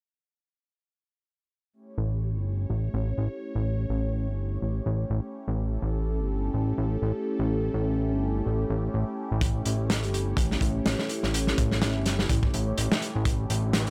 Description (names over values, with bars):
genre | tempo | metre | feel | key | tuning
breakbeat, breaks | 125 BPM | 4/4 | swing 57% on 16ths | unclear | A4 = 436 Hz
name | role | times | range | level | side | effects
phased analog pad | sustained chords | 1.7-13.9 s | A3 to C#5 | -34 LUFS | equal | phaser, chorus, sidechain pumping
fat analog bass | bass | 2.0-13.9 s | G1 to A1 | -30 LUFS | equal | none
crunchy breakbeat drum kit | drums | 9.4-13.9 s | hi-hat, kick drum, snare drum | -29 LUFS | equal | none
riser | sound effects | 13.7-13.9 s | none | -40 LUFS | equal | none
room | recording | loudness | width
light reverb | none | -28 LUFS | mono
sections
1.7-13.9 A section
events
filter sweep on analog synth bass 1.7-13.9; riser 13.7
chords
1.7 A7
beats
| 1.74 2.22 2.70 3.18 | 3.66 4.14 4.62 5.10 | 5.58 6.06 6.54 7.02 | 7.50 7.98 8.46 8.94 | 9.42 9.90 10.38 10.86 | 11.34 11.82 12.30 12.78 | 13.26 13.74